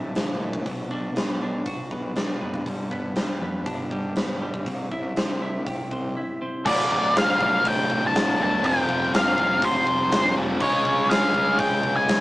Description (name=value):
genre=quiet-loud alternative rock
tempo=121 BPM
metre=4/4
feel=straight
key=unclear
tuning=A4 = 440 Hz
part: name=twelve-string electric guitar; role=arpeggios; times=0.0-6.7 s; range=G2 to G4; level=-31 LUFS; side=equal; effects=none
part: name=fuzz fingered electric bass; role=bass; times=0.0-12.2 s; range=D1 to F2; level=-32 LUFS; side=equal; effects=overdrive
part: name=huge arena drum kit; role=drums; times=0.2-12.2 s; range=crash cymbal, hi-hat, kick drum, snare drum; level=-27 LUFS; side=equal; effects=none
part: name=octave-fuzz lead guitar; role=melody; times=6.7-12.2 s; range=C5 to A5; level=-22 LUFS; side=left 1 dB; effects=distortion
part: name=cranked stack guitar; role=riff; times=6.7-12.2 s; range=D2 to G#4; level=-32 LUFS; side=equal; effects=none
part: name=fuzz guitar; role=riff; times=6.7-12.2 s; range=D2 to C#4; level=-25 LUFS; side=equal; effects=distortion
room=moderate booth ambience, RT60 0.2 s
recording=rough rehearsal-room recording, tube saturation, small speaker sound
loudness=-21 LUFS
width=side -18 dB against mid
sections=0.0-6.7 A section; 6.7-12.2 B section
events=none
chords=0.0 D5; 0.7 Bm; 2.7 G; 4.7 C; 6.7 Dm; 8.6 F; 10.6 C#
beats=0.16 | 0.67 1.17 1.67 2.17 | 2.67 3.17 3.67 4.17 | 4.67 5.17 5.67 6.17 | 6.67 7.16 7.66 8.15 | 8.64 9.14 9.63 10.12 | 10.61 11.10 11.60 12.09